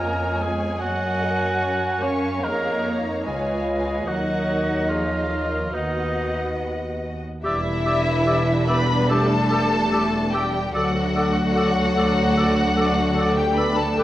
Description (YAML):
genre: cinematic, emotional film score for orchestra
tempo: 73 BPM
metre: 4/4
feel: rubato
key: E minor from 7.4 s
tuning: A4 = 441 Hz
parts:
  - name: muted symphonic violin section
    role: melody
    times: 0.0-14.0 s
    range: D#5 to Db6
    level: -28 LUFS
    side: left 2 dB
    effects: none
  - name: warm cor anglais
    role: melody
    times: 0.0-6.6 s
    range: D#4 to Db5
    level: -28 LUFS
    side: right 1 dB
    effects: none
  - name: hollow concert flute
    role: second line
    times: 0.0-14.0 s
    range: Eb5 to E6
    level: -31 LUFS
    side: left 1 dB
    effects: none
  - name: muted symphonic violin section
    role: second line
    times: 0.0-14.0 s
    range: E4 to Ab5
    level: -29 LUFS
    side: left 2 dB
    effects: none
  - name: warm clarinet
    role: second line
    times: 0.0-14.0 s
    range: G4 to Eb5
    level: -30 LUFS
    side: left 1 dB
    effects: none
  - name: muted symphonic viola section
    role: accompaniment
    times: 0.0-14.0 s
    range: F3 to Db5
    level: -27 LUFS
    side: right 1 dB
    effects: none
  - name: muted symphonic cello section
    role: bass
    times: 0.0-14.0 s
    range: D2 to Db4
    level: -30 LUFS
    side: right 1 dB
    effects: none
  - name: muted symphonic double bass section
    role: bass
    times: 0.0-14.0 s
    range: E1 to Gb2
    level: -28 LUFS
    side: right 1 dB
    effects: none
  - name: mellow French horn section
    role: sustained chords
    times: 7.4-14.0 s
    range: E3 to B3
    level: -25 LUFS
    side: left 1 dB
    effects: none
  - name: clear oboe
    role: second line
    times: 7.5-14.0 s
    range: B4 to D5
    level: -30 LUFS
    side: right 1 dB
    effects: none
room: wet recital hall reverb, RT60 1.7 s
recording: worn, warbling old tape, cassette tape, warbly pitch drift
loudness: -19 LUFS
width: side -14 dB against mid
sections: 0.0-7.4 A section; 7.4-14.0 B section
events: none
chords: 0.0 Dbadd9; 0.8 Gbadd9; 2.4 Dbadd9/F; 4.1 Ebm7; 5.8 B/D#; 7.4 Em7; 10.7 Dadd9